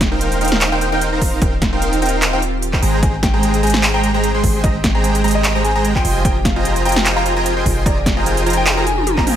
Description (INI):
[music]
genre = future bass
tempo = 149 BPM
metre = 4/4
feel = swing 54% on 16ths, half-time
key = F minor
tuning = A4 = 440 Hz
[part]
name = shimmering ambient pad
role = sustained chords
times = 0.0-9.4 s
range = Eb3 to Bb4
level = -26 LUFS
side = equal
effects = chorus, built-in reverb, sidechain pumping
[part]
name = warm 808-style bass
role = bass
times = 0.0-9.3 s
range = Eb1 to Ab1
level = -20 LUFS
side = equal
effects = sidechain pumping
[part]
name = big-room dance drum kit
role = drums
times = 0.0-9.4 s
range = handclaps, hi-hat, snare drum, toms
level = -20 LUFS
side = equal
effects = overdrive
[part]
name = electronic kick drum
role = drums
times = 0.0-9.2 s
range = none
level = -19 LUFS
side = equal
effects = overdrive
[part]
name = wide unison pluck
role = arpeggios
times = 0.1-9.4 s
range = G5 to C6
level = -26 LUFS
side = equal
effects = lush chorus, sidechain pumping
[part]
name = dense compressed supersaw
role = riff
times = 0.1-9.4 s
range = Ab3 to C6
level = -19 LUFS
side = right 1 dB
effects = cassette tape, sidechain pumping, tape echo
[part]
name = clear concert grand piano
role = melody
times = 3.0-9.4 s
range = D5 to Bb5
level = -24 LUFS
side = left 1 dB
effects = sidechain pumping, ping-pong delay
[sound]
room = light reverb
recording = none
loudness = -14 LUFS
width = side -10 dB against mid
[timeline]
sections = 0.0-9.4 A section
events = drum fill 8.7-9.4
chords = 0.0 Eb69; 2.8 Abmaj9; 6.0 Fm11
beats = 0.21 0.61 1.01 | 1.42 1.82 2.22 2.62 | 3.03 3.43 3.83 4.24 | 4.64 5.04 5.44 5.85 | 6.25 6.65 7.05 7.46 | 7.86 8.26 8.66 9.07